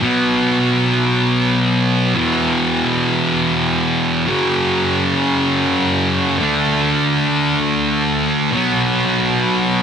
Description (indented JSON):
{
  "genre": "rock",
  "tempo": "free time",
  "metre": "none",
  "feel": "none",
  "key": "unclear",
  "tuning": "A4 = 439 Hz",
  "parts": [
    { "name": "thick fuzz guitar", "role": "solo", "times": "0.0-9.8 s", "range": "E2 to D4", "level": "-14 LUFS", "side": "equal", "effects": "distortion" }
  ],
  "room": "moderate booth ambience, RT60 0.2 s",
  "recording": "dense, heavily limited modern master",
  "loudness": "-14 LUFS",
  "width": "side -7 dB against mid",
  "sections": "0.0-9.8 A section",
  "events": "none",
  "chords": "0.0 B5; 2.2 E5; 4.3 F#5; 6.4 D5; 8.5 B5",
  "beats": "free time"
}